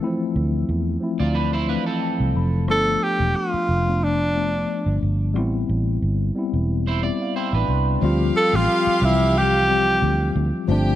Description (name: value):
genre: lush 1970s-style soul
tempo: 90 BPM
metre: 4/4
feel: swing 54% on 16ths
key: D dorian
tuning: A4 = 441 Hz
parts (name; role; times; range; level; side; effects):
- mellow tine electric piano; accompaniment; 0.0-11.0 s; E3 to C6; -24 LUFS; left 3 dB; medium stereo tremolo
- fingered electric bass; bass; 0.4-11.0 s; E1 to E2; -22 LUFS; right 1 dB; none
- electric guitar at the edge of break-up; riff; 1.2-2.6, 6.9-8.0 s; C4 to D5; -28 LUFS; right 6 dB; wide subtle chorus
- clear tenor saxophone; melody; 2.7-10.4 s; D4 to A4; -20 LUFS; equal; none
- warm studio violin section; second line; 8.0-11.0 s; G4 to G5; -27 LUFS; right 2 dB; none
room: light reverb, small room reverb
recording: none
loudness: -18 LUFS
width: side -13 dB against mid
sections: 0.0-8.0 A section; 8.0-11.0 B section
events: tine electric piano fill 1.4-2.7, 6.7-8.0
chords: 0.0 Dm7; 2.7 G7; 5.4 Am9; 8.0 Dm11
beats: | 0.02 0.68 1.35 2.02 | 2.69 3.35 4.02 4.69 | 5.36 6.02 6.69 7.36 | 8.03 8.69 9.36 10.02 | 10.69